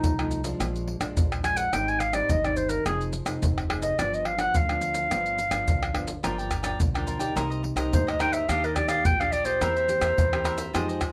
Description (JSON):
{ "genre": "samba and choro", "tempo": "106 BPM", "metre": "4/4", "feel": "straight", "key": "C minor", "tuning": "A4 = 440 Hz", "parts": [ { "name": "mellow clarinet", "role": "melody", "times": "0.0-10.9 s", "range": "Eb4 to Ab5", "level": "-28 LUFS", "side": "equal", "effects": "none" }, { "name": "nylon-string guitar", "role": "accompaniment", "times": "0.0-11.1 s", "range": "F2 to Ab4", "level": "-35 LUFS", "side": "equal", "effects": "none" }, { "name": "upright bass", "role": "bass", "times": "0.0-11.1 s", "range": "F1 to F2", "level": "-35 LUFS", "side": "equal", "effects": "none" }, { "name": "maracas, surdo, pandeiro and tamborim", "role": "percussion", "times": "0.0-11.1 s", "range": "none", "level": "-30 LUFS", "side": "equal", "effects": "none" }, { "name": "cavaquinho", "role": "accompaniment", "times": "6.2-11.1 s", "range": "D4 to G5", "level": "-35 LUFS", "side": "equal", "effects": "none" } ], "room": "moderate studio ambience, RT60 0.5 s", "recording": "none", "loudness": "-26 LUFS", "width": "mono", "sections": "0.0-11.1 A section", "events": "clarinet solo 0.0-11.1", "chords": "0.0 F7/C; 0.6 Bb7; 1.7 Abmaj7; 2.9 Fm7; 4.0 G7; 6.2 Gm7; 7.4 Cm7; 8.5 Ebmaj7; 9.6 C7/E" }